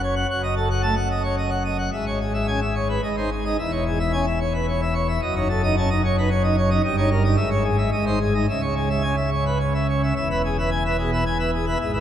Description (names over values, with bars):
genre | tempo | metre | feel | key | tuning
classical, organ toccata | 110 BPM | 3/4 | straight | C# minor | A4 = 440 Hz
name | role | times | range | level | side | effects
pipe organ, plenum | solo | 0.0-12.0 s | E1 to A5 | -20 LUFS | equal | none
room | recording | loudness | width
wet cathedral reverb, RT60 5.1 s | none | -20 LUFS | side -10 dB against mid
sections
0.0-10.2 A section; 10.2-12.0 B section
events
none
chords
0.3 D#dim/F#; 1.9 C#m/G#; 3.0 G#; 3.6 C#m/E; 5.2 D#m7b5/F#; 6.8 D#7/G; 7.4 C#m/G#; 7.9 G#; 8.5 C#m; 10.2 E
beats
| 0.29 0.83 1.37 | 1.93 2.48 3.03 | 3.59 4.14 4.68 | 5.23 5.77 6.30 | 6.84 7.38 7.92 | 8.48 9.04 9.61 | 10.16 10.71 11.25 | 11.79